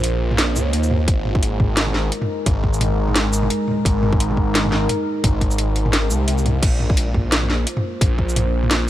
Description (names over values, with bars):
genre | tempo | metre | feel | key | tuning
half-time drum and bass | 173 BPM | 4/4 | swing 58% on 16ths, half-time | unclear | A4 = 440 Hz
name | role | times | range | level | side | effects
deep dark ambient pad | sustained chords | 0.0-8.9 s | Ab3 to C5 | -24 LUFS | equal | chorus, built-in reverb, sidechain pumping
phased detuned saw bass | bass | 0.0-8.9 s | Ab1 to Eb2 | -20 LUFS | equal | phaser
drum and bass drum kit | drums | 0.0-8.8 s | crash cymbal, hi-hat, shaker, snare drum, toms | -22 LUFS | equal | none
electronic kick drum | drums | 1.1-8.3 s | none | -19 LUFS | equal | none
room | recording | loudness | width
little or no reverb | none | -16 LUFS | side -13 dB against mid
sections
0.0-8.9 A section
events
none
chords
0.0 Bbm; 1.1 Abadd9; 6.6 Bb5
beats
0.04 0.38 0.73 | 1.08 1.43 1.77 2.12 | 2.46 2.81 3.16 3.51 | 3.85 4.20 4.55 4.89 | 5.24 5.59 5.93 6.28 | 6.63 6.97 7.32 7.67 | 8.01 8.36 8.71